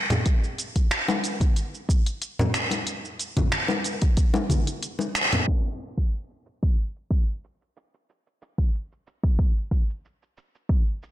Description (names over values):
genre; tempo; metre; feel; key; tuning
downtempo; 92 BPM; 4/4; swing 53% on 16ths; none; none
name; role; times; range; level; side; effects
organic electronic drum kit; drums; 0.1-11.1 s; finger snaps, hi-hat, shaker; -27 LUFS; equal; low-pass filter on hats, studio reverb, low-pass filter on perc, soft clipping on snare, low-pass filter on snare
congas and bongos; percussion; 0.1-5.4 s; none; -27 LUFS; left 1 dB; none
electronic kick drum; drums; 0.3-10.8 s; none; -22 LUFS; equal; studio reverb
room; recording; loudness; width
moderate recital hall reverb, RT60 1.6 s; blown-out, overdriven recording, overdrive, low-pass filter; -23 LUFS; side -13 dB against mid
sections
0.0-5.5 A section; 5.5-11.1 B section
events
kick drops out 4.8-5.5; band accent 5.2-5.5; filter sweep 5.5-11.1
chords
none